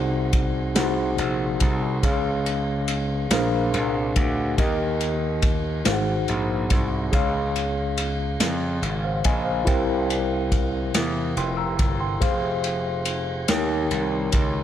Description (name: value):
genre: slow gospel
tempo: 47 BPM (dotted quarters)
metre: 6/8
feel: straight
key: Ab major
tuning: A4 = 441 Hz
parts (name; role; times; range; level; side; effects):
- tine electric piano; accompaniment; 0.0-14.6 s; Ab2 to E6; -25 LUFS; left 1 dB; medium stereo tremolo
- gritty slap bass; bass; 0.0-14.6 s; F1 to F2; -27 LUFS; equal; overdrive
- vintage brush drum kit; drums; 0.3-14.5 s; kick drum, ride cymbal, snare drum; -26 LUFS; equal; none
room: light reverb, small room ambience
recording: none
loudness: -21 LUFS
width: side -10 dB against mid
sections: 0.0-14.6 A section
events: none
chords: 0.0 Ab7/C; 0.8 Ab7; 2.0 Db; 3.3 Bb9; 4.6 Eb; 5.9 Ab7; 7.1 Db; 9.7 C7; 12.2 Fm; 13.5 Eb7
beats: 0.76 | 2.04 3.31 | 4.58 5.85 | 7.12 8.40 | 9.67 10.94 | 12.21 13.48